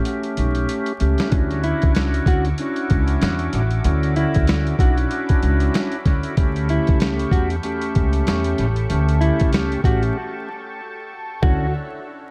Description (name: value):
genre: hip hop, boom-bap hip-hop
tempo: 95 BPM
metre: 4/4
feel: swing 58% on 16ths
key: D major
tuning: A4 = 441 Hz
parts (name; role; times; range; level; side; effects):
- bright tonewheel organ; accompaniment; 0.0-11.7 s; D3 to G4; -27 LUFS; equal; slow rotary speaker, cassette tape, high-pass filter, low-pass filter, dub echo
- boom bap sampler-style drum kit; drums; 0.1-11.6 s; hi-hat, kick drum, snare drum, toms; -22 LUFS; equal; none
- upright bass; bass; 0.4-11.7 s; A1 to E2; -23 LUFS; equal; none
- lush unison pad; sustained chords; 1.3-11.7 s; D4 to D6; -36 LUFS; equal; chorus, high-pass filter, low-pass filter
- mellow electric guitar; melody; 1.6-11.7 s; E4 to F#4; -30 LUFS; equal; high-pass filter, low-pass filter, dub echo
room: light reverb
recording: echo-heavy mix, vinyl crackle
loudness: -20 LUFS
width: mono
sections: 0.0-11.4 A section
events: break 0.0-1.3, 10.2-11.4; drum fill 0.1-1.3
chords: 0.0 A9; 1.3 Dmaj9; 6.4 A9; 11.4 Dmaj9